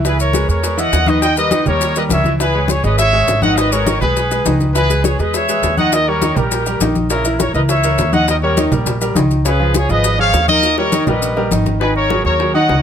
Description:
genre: latin, salsa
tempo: 204 BPM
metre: 4/4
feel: straight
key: unclear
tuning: A4 = 440 Hz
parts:
  - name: bright concert grand piano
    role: accompaniment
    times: 0.0-12.8 s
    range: C#3 to E5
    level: -19 LUFS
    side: right 1 dB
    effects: none
  - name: upright bass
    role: bass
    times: 0.0-12.8 s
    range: G#1 to E2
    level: -18 LUFS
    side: right 1 dB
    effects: none
  - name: bongos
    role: percussion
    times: 0.0-12.8 s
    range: none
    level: -24 LUFS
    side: left 6 dB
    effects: none
  - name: congas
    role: percussion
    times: 0.0-12.8 s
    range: none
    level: -22 LUFS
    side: left 2 dB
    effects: none
  - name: clear trumpet section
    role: melody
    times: 0.1-12.8 s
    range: E4 to G5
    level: -16 LUFS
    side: left 1 dB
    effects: tape echo
  - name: maracas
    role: percussion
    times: 0.1-11.8 s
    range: none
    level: -25 LUFS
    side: left 5 dB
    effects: none
room: light reverb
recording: close, detailed microphones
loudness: -12 LUFS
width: side -8 dB against mid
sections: 0.0-2.4 A section; 2.4-11.8 B section; 11.8-12.8 A section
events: drum fill 10.6-11.8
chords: 0.0 C#m7; 1.2 D#7b9; 2.4 C#m; 3.6 G#m; 4.8 C#m7; 5.9 D#; 7.1 A#dim; 8.3 D#; 9.5 C#7; 10.6 D#; 11.8 G#9sus4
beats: | 0.05 0.34 0.64 0.93 | 1.22 1.52 1.81 2.11 | 2.40 2.69 2.99 3.28 | 3.58 3.87 4.16 4.46 | 4.75 5.05 5.34 5.63 | 5.93 6.22 6.51 6.81 | 7.10 7.40 7.69 7.99 | 8.28 8.57 8.87 9.16 | 9.46 9.75 10.04 10.34 | 10.63 10.93 11.22 11.51 | 11.81 12.10 12.39 12.69

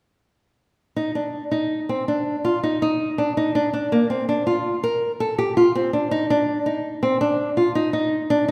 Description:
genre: contemporary instrumental, contemporary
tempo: 163 BPM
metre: 7/4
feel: straight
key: C dorian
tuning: A4 = 441 Hz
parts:
  - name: nylon-string guitar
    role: solo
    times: 1.0-8.5 s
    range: Bb3 to Bb4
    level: -22 LUFS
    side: equal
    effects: none
room: wet recital hall reverb, RT60 1.7 s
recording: recorded in a church or concert hall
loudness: -22 LUFS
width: mono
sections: 1.0-6.1 A section; 6.1-8.5 B section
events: none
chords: none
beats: | 0.96 1.33 1.70 2.07 2.44 2.81 3.17 | 3.54 3.91 4.28 4.65 5.01 5.38 5.75 | 6.11 6.48 6.84 7.21 7.58 7.94 8.31

